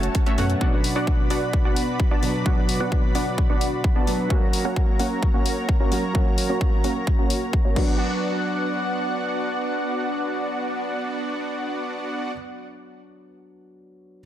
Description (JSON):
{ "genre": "EDM, festival progressive house", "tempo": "130 BPM", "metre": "4/4", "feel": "straight", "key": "B minor", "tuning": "A4 = 440 Hz", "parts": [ { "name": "dark grand piano", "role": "accompaniment", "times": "0.0-14.2 s", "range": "B2 to B4", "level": "-30 LUFS", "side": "right 1 dB", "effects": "sidechain pumping, digital delay" }, { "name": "lush unison pad", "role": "sustained chords", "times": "0.0-12.3 s", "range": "B3 to B5", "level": "-30 LUFS", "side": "equal", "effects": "chorus, sidechain pumping" }, { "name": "supersaw stab", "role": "riff", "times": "0.0-12.3 s", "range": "A3 to A#5", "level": "-27 LUFS", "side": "right 1 dB", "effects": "sidechain pumping, low-pass filter, digital delay" }, { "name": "saturated sub bass", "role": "bass", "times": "0.0-0.5 s", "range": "F#2", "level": "-23 LUFS", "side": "equal", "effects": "sidechain pumping" }, { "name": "house drum kit", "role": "drums", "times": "0.0-7.9 s", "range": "crash cymbal, hi-hat", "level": "-32 LUFS", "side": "left 5 dB", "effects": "none" }, { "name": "electronic kick drum", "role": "drums", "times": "0.1-7.9 s", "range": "none", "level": "-21 LUFS", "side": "equal", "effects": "overdrive" } ], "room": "light reverb", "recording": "dense, heavily limited modern master", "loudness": "-20 LUFS", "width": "side -11 dB against mid", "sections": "0.0-8.0 A section; 8.0-11.7 B section", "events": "filter sweep on supersaw synth 0.0-8.0", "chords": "0.0 F#m; 0.6 Bm; 4.3 F#; 7.8 Bm" }